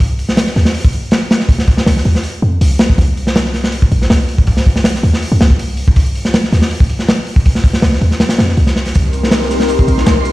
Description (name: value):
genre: drum and bass, jungle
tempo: 161 BPM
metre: 4/4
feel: straight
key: C minor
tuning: A4 = 441 Hz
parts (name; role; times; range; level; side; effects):
- warm 808-style bass; bass; 0.0-10.3 s; Bb1 to F2; -14 LUFS; equal; tube saturation
- crunchy breakbeat drum kit; drums; 0.0-10.3 s; hi-hat, kick drum, snare drum; -12 LUFS; equal; none
- airy breathy pad; sustained chords; 8.9-10.3 s; C4 to Bb4; -16 LUFS; left 3 dB; chorus
- electronic shaker and snare drum; drums; 8.9-10.3 s; none; -28 LUFS; equal; high-pass filter on snare, high-pass filter on perc, high-pass filter on room
- wind-like tuned noise texture; texture; 9.1-10.3 s; C6; -26 LUFS; right 7 dB; built-in reverb
room: light reverb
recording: played on a big sound system in a bare room, stone room reverb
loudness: -10 LUFS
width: side -17 dB against mid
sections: 0.0-10.3 A section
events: kick drops out 8.2-8.9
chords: 0.0 N.C.; 8.9 Cm7